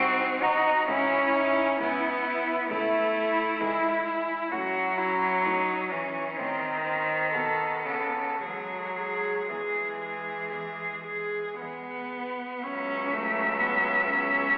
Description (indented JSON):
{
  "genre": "classical, lyrical piece for cello ensemble",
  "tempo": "53-67 BPM",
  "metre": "4/4",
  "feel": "rubato",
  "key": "E major",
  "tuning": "A4 = 440 Hz",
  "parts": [
    { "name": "rich cello", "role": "melody", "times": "0.0-14.6 s", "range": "G#3 to E5", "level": "-30 LUFS", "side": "equal", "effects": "none" },
    { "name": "rich cello", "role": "second line", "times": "0.0-14.6 s", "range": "A3 to A4", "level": "-30 LUFS", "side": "equal", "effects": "none" },
    { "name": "rich cello", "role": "accompaniment", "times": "0.0-14.6 s", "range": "C#3 to D#4", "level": "-28 LUFS", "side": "equal", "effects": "none" },
    { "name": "rich cello", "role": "bass", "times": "0.0-14.6 s", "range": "B#1 to B2", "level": "-40 LUFS", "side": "equal", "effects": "none" }
  ],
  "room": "wet concert hall reverb, RT60 2.4 s",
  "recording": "recorded in a church or concert hall, telephone sound",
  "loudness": "-24 LUFS",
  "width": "side -29 dB against mid",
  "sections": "0.0-12.6 A section; 12.6-14.6 B section",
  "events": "none",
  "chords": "0.0 G#7/B# (rootless); 0.9 C#m; 4.5 A; 6.4 Am; 7.3 B9; 8.4 E; 12.6 C#m"
}